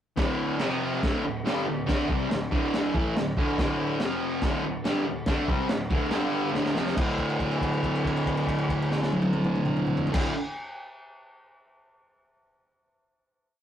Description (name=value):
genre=garage rock duo or trio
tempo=141 BPM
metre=4/4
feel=straight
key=D minor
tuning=A4 = 440 Hz
part: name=fuzz guitar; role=riff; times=0.2-10.3 s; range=D2 to D4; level=-26 LUFS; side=equal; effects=distortion
part: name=crunchy breakbeat drum kit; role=drums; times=0.2-10.2 s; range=crash cymbal, kick drum, snare drum, toms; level=-29 LUFS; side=equal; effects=none
room=moderate studio reverb, RT60 0.6 s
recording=rough rehearsal-room recording, warm saturation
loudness=-24 LUFS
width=side -10 dB against mid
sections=0.2-7.0 riff; 7.0-10.4 final chord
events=drum fill 6.5-7.0; held note 7.0-10.1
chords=0.2 D5; 0.6 F5; 1.0 D5; 4.0 F5; 4.4 D5; 6.1 G5; 6.5 Dm; 7.0 D5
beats=| 0.16 0.59 1.01 1.44 | 1.86 2.29 2.71 3.14 | 3.56 3.99 4.41 4.84 | 5.26 5.69 6.11 6.54 | 6.96 7.39 7.82 8.25 | 8.67 9.10 9.53 9.96